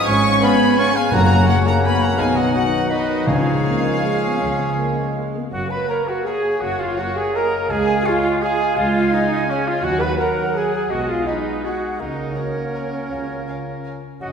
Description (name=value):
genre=classical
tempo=151-186 BPM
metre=3/4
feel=rubato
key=F# major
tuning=A4 = 440 Hz
part: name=warm symphonic violin section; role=melody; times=0.0-13.9 s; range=D#5 to C#6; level=-27 LUFS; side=left 3 dB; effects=none
part: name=dark chamber violin section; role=second line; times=0.0-13.9 s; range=C#5 to C#6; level=-31 LUFS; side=left 2 dB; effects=none
part: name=dark clarinet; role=second line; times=0.0-14.3 s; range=C#4 to F#5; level=-30 LUFS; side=equal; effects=none
part: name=mellow bassoon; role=accompaniment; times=0.0-14.3 s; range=E#3 to C#4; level=-30 LUFS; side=right 1 dB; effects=none
part: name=mellow French horn section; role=sustained chords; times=0.0-14.0 s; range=D#3 to F#4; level=-26 LUFS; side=left 2 dB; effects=none
part: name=bright oboe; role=second line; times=0.1-14.3 s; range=G#4 to G#5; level=-27 LUFS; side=equal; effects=none
part: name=bright silver concert flute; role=second line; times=0.1-14.3 s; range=C#5 to C#6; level=-27 LUFS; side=equal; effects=none
part: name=dark symphonic double bass section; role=bass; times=0.1-14.3 s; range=F#1 to D#2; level=-27 LUFS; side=equal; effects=none
part: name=rich symphonic cello section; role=bass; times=0.1-14.3 s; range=C#2 to C#3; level=-25 LUFS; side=right 2 dB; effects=none
part: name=dark symphonic viola section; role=accompaniment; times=0.4-14.3 s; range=G#3 to B4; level=-24 LUFS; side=right 2 dB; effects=none
part: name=warm trombone section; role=sustained chords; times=0.4-5.3 s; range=C#3 to B3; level=-27 LUFS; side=equal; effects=none
part: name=clear trumpet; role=stabs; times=0.4-14.3 s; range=C#4 to B4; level=-28 LUFS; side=right 1 dB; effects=none
part: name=timpani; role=percussion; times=1.1-3.8 s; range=F#2 to C#3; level=-24 LUFS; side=left 2 dB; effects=none
room=wet concert hall reverb, RT60 2.0 s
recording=heard from further back in the room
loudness=-17 LUFS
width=side -6 dB against mid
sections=0.0-5.5 A section; 5.5-14.3 B section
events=none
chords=0.0 C#7/G#; 1.1 F#; 2.2 B; 3.3 C#; 5.5 F#; 7.7 C#; 9.8 D#m; 10.9 G#m7/B; 12.0 F#/C#; 13.1 C#